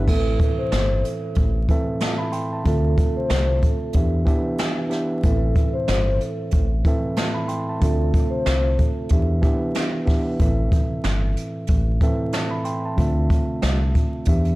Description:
hip hop, boom-bap hip-hop; 93 BPM; 4/4; swing 56% on 16ths; A4 = 443 Hz
tine electric piano; accompaniment; 0.0-14.6 s; A2 to C6; -25 LUFS; right 1 dB; high-pass filter, low-pass filter
deep dub fingered electric bass; bass; 0.0-14.6 s; G1 to E2; -21 LUFS; equal; transformer saturation
vibraphone with soft mallets; melody; 0.1-9.3 s; A4 to C5; -28 LUFS; left 1 dB; high-pass filter, low-pass filter, tape echo
jazz brush drum kit; drums; 0.1-14.6 s; crash cymbal, hi-hat, kick drum, snare drum; -21 LUFS; equal
small room ambience; transformer saturation, vinyl crackle; -19 LUFS; side -19 dB against mid
0.1-14.6 A section
0.1 Am; 2.7 Dm7; 3.9 Em7; 5.2 Am; 7.8 Dm7; 9.1 Em7; 10.4 Am; 13.0 Dm7

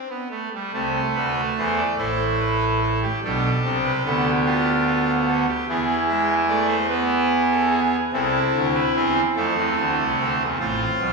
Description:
classical, baroque-style 4-part fugue for pipe organ; 49 BPM (dotted quarters); 12/8; straight; A minor; A4 = 441 Hz
pipe organ, trumpet; solo; 0.0-11.1 s; A1 to E5; -19 LUFS; right 1 dB
wet recital hall reverb, RT60 1.4 s; studio reverb; -19 LUFS; side -3 dB against mid
0.7-11.1 A section
0.0 N.C.; 0.7 Am/C; 3.2 Bm7b5; 5.7 E; 8.1 Am/C; 10.6 F/A

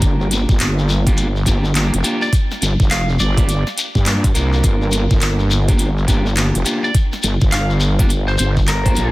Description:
glitch hop; 104 BPM; 4/4; swing 63% on 16ths; G minor pentatonic; A4 = 439 Hz
electric guitar at the edge of break-up; stabs; 0.0-9.1 s; Bb3 to C5; -24 LUFS; right 1 dB; sidechain pumping, digital delay
wobble bass; bass; 0.0-9.1 s; F1 to G2; -17 LUFS; equal; chorus, overdrive
electronic kick drum; drums; 0.0-8.9 s; -16 LUFS; equal
pop drum kit; drums; 0.0-9.1 s; handclaps, hi-hat, snare drum; -23 LUFS; equal
shekere; percussion; 0.0-9.1 s; -25 LUFS; left 4 dB
lightly driven lead guitar; melody; 2.2-9.1 s; Bb4 to F5; -24 LUFS; equal; digital delay
little or no reverb; dense, heavily limited modern master; -14 LUFS; side -19 dB against mid
0.0-9.1 A section
0.0 Gm7

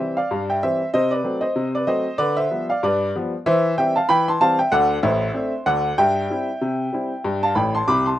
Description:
ragtime piano; 95 BPM; 2/4; swing 56% on 16ths; C major; A4 = 440 Hz
warm upright piano; solo; 0.0-8.2 s; A1 to D6; -18 LUFS; equal
small room ambience; rough home demo mix; -18 LUFS; side -13 dB against mid
0.0-8.2 A section
upright piano fill 7.6-8.2
0.0 C; 0.9 D13b9/C; 2.2 G7/D; 3.5 C/E; 4.7 D5; 6.0 C/G; 7.2 G

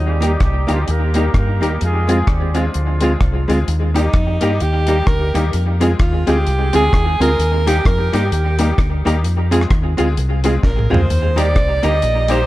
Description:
ska; 129 BPM; 4/4; swing 59% on 8ths; A4 = 440 Hz
mellow horn section; melody; 0.0-3.5 s; F3 to Bb4; -24 LUFS; right 1 dB; tape echo
fingered electric bass; bass; 0.0-12.4 s; Bb1 to G2; -17 LUFS; equal
hollow-body jazz guitar; accompaniment; 0.2-12.4 s; Ab3 to Ab4; -22 LUFS; right 2 dB; tape echo
honky-tonk upright piano; stabs; 0.2-12.4 s; G3 to Ab4; -23 LUFS; left 4 dB; tape echo
deep reggae drum kit; drums; 0.2-12.4 s; hi-hat, kick drum, rim click, snare drum, toms; -18 LUFS; equal
breathy alto saxophone; melody; 4.0-12.5 s; Eb4 to Eb5; -20 LUFS; right 2 dB; tape echo
light reverb; dark, warm production; -14 LUFS; side -16 dB against mid
0.0-3.7 A section; 3.7-12.5 B section
alto saxophone solo 3.7-12.5; drum fill 10.6-11.1
0.0 Eb; 1.8 Fm; 3.7 Eb; 5.5 Fm; 7.4 Eb; 9.2 Fm; 11.1 Eb

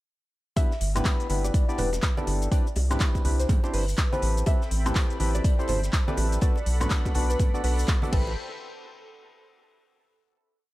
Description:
deep house; 123 BPM; 4/4; swing 60% on 16ths; A4 = 440 Hz
soft round pluck; melody; 0.6-8.3 s; A4 to E5; -35 LUFS; equal; analog chorus, tape echo
percussive organ stab; stabs; 0.6-8.3 s; B3 to D5; -32 LUFS; equal; chorus, sidechain pumping, tape echo
big rock drum kit; drums; 0.6-8.1 s; hi-hat, snare drum; -45 LUFS; left 3 dB
deep house drum kit; drums; 0.6-8.2 s; crash cymbal, handclaps, hi-hat, shaker, woodblock; -33 LUFS; left 1 dB
electronic kick drum; drums; 0.6-8.2 s; -24 LUFS; equal
bongos and congas; percussion; 0.6-8.3 s; -36 LUFS; right 2 dB
round analog bass; bass; 0.8-8.4 s; E1 to C2; -25 LUFS; equal; sidechain pumping
warm analog pad; sustained chords; 4.5-8.4 s; C4 to B5; -39 LUFS; equal; chorus, sidechain pumping
studio reverb; -22 LUFS; side -18 dB against mid
0.6-8.4 drop; 8.4-10.3 final hit
drop 0.6-8.4
0.6 G6; 2.5 Cmaj9; 4.2 Am9; 6.4 Bm7; 8.1 Am9; 8.4 N.C.

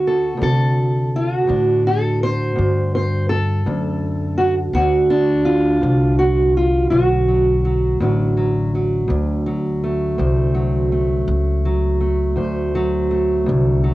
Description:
acoustic country blues, solo or duo; 55 BPM (dotted quarters); 12/8; straight; D mixolydian; A4 = 440 Hz
fingerpicked steel-string acoustic guitar; melody; 0.0-13.9 s; D2 to C5; -18 LUFS; right 1 dB; cassette tape
upright bass; bass; 0.0-13.9 s; A1 to D3; -20 LUFS; equal
light reverb; home recording on cassette; -16 LUFS; side -17 dB against mid
0.0-13.9 A section
0.0 D7

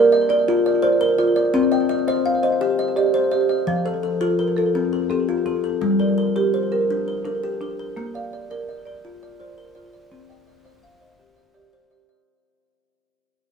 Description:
southern african traditional; 112 BPM (dotted quarters); 12/8; straight; A4 = 440 Hz
kalimba; arpeggios; 0.0-12.4 s; F3 to F5; -21 LUFS; left 2 dB; tape echo
marimba with medium mallets; arpeggios; 0.0-12.3 s; F3 to G5; -22 LUFS; right 4 dB
moderate studio reverb, RT60 0.5 s; heard from further back in the room, small room ambience; -18 LUFS; side -6 dB against mid
0.0-12.3 A section
fade-out 0.0-12.3
0.0 Bb; 1.5 Cm; 3.7 F; 5.8 Gm; 8.0 Bb; 10.1 Cm

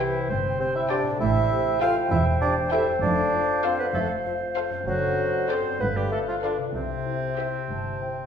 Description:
cinematic, playful, whimsical film cue; 65 BPM (dotted quarters); 6/8; straight; C major; A4 = 440 Hz
warm studio violin section; melody; 0.0-7.6 s; D5 to G5; -34 LUFS; left 5 dB
mellow hollow concert flute; second line; 0.0-8.3 s; D5 to A5; -35 LUFS; left 2 dB
rich studio violin section; second line; 0.0-7.6 s; B4 to C5; -38 LUFS; left 5 dB
warm clarinet; second line; 0.0-8.3 s; B4 to C5; -32 LUFS; left 2 dB
warm oboe; second line; 0.0-8.3 s; C4 to F5; -31 LUFS; right 3 dB
warm bassoon; accompaniment; 0.0-8.3 s; C3 to F4; -27 LUFS; right 1 dB
warm studio viola section; accompaniment; 0.0-7.6 s; G4 to A4; -33 LUFS; left 1 dB
dark French horn section; sustained chords; 0.0-8.1 s; E4 to C5; -34 LUFS; equal
concert harp; arpeggios; 0.0-8.3 s; F2 to A4; -33 LUFS; left 8 dB
dark studio cello section; bass; 0.0-8.3 s; E2 to C3; -31 LUFS; right 2 dB
warm studio double bass section; bass; 0.0-8.3 s; E1 to C2; -31 LUFS; right 2 dB
wet recital hall reverb, RT60 1.5 s; recorded in a church or concert hall; -22 LUFS; side -7 dB against mid
0.0-8.3 A section
0.0 C; 1.2 Am7; 3.0 Dm7/F; 4.9 D7/F#; 5.8 G9; 6.8 C

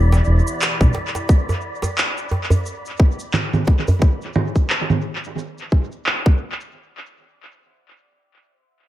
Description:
organic downtempo; 88 BPM; 4/4; swing 58% on 16ths; E minor; A4 = 436 Hz
warm analog pad; sustained chords; 0.0-1.2 s; B2 to G4; -31 LUFS; left 2 dB; chorus, sidechain pumping, shimmer reverb
smooth gliding synth bass; bass; 0.0-0.9 s; E1 to B1; -14 LUFS; equal; sidechain pumping
wind-like tuned noise texture; texture; 0.0-4.0 s; D5 to B5; -32 LUFS; equal; built-in reverb, shimmer reverb
electronic shaker, handclaps and congas; drums; 0.1-6.7 s; -22 LUFS; right 2 dB; overdrive, low-pass filter on perc, low-pass filter on snare, low-pass filter on room, tape echo
djembe; percussion; 0.1-4.0 s; -20 LUFS; right 1 dB
electronic kick drum; drums; 0.8-6.4 s; -15 LUFS; equal; overdrive
little or no reverb; echo-heavy mix; -17 LUFS; side -14 dB against mid
0.0-6.7 A section
0.0 Em7

